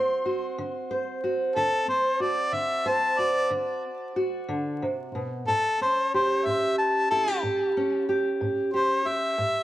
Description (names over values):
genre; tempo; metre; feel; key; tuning
acoustic country blues, solo or duo; 61 BPM (dotted quarters); 12/8; straight; unclear; A4 = 440 Hz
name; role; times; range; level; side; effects
warm harmonica; melody; 0.0-9.6 s; A4 to C6; -25 LUFS; left 1 dB; tape echo
fingerpicked steel-string acoustic guitar; accompaniment; 0.0-9.6 s; A2 to C5; -27 LUFS; right 1 dB; none
room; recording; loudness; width
light reverb; worn, warbling old tape, cassette tape, vinyl crackle, warbly pitch drift; -23 LUFS; side -14 dB against mid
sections
0.0-9.6 A section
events
harmonica solo 0.0-9.6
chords
0.0 D7; 5.5 A7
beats
0.59 | 1.57 2.55 3.52 4.50 | 5.48 6.46 7.43 8.41 | 9.39